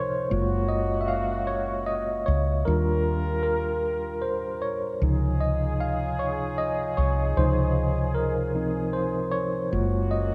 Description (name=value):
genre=slow six-eight R&B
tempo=51 BPM (dotted quarters)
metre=6/8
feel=straight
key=Db major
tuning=A4 = 440 Hz
part: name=mellow tine electric piano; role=accompaniment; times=0.0-10.3 s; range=C3 to F5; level=-28 LUFS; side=equal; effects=fast tremolo
part: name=woody fretless electric bass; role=bass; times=0.0-10.3 s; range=Gb1 to Eb2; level=-29 LUFS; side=equal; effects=none
part: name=warm horn section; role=stabs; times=0.3-10.3 s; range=Bb3 to Bb4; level=-38 LUFS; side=equal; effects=tape echo
room=moderate lush hall reverb, RT60 2.9 s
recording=rough home demo mix, cassette tape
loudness=-26 LUFS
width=mono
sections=0.0-10.3 A section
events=tine electric piano solo 0.0-10.3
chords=0.3 Gbmaj9; 2.7 Ebmaj9; 5.0 Dbmaj9; 9.7 Gbmaj9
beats=| 0.30 1.48 | 2.65 3.83 | 5.00 6.18 | 7.36 8.53 | 9.71